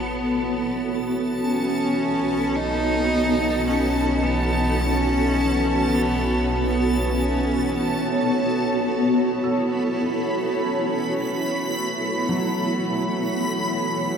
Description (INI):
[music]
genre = ambient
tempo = 52 BPM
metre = 3/4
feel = straight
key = unclear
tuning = A4 = 441 Hz
[part]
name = rich cello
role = melody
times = 0.0-14.2 s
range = A3 to D#4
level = -26 LUFS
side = equal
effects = shimmer reverb, ping-pong delay
[part]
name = granular cloud pad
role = sustained chords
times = 0.0-14.2 s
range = B3 to C#5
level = -23 LUFS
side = equal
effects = built-in reverb, shimmer reverb
[part]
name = deep rumbling drone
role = bass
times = 0.0-8.2 s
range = A1 to B1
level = -28 LUFS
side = equal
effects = built-in reverb, phaser
[part]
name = overtone-sweeping drone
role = drone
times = 0.0-14.2 s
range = E3 to B3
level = -34 LUFS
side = equal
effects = chorus, built-in reverb
[part]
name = backwards swelling texture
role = texture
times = 0.0-14.2 s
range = A5 to B6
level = -30 LUFS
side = right 1 dB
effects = built-in reverb, shimmer reverb
[part]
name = felt-muted upright piano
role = arpeggios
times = 9.4-14.2 s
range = F#3 to E6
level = -32 LUFS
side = equal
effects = shimmer reverb, ping-pong delay
[sound]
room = wet huge ambient reverb, RT60 7.0 s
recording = none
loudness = -20 LUFS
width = side -7 dB against mid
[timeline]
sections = 0.0-8.3 A section; 8.3-14.2 B section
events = fade-in on synth drone 0.0-8.3, 8.3-14.2; fade-in on synth texture 0.0-8.3; filter sweep on ambient pad 0.0-8.3; fade-in on felt piano 8.3-14.2; fade-in on cello 8.3-14.2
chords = 0.0 A69; 1.4 B9; 8.3 A69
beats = 0.26 | 1.39 2.52 3.65 | 4.79 5.94 7.10 | 8.26 9.42 10.57 | 11.71 12.85 13.99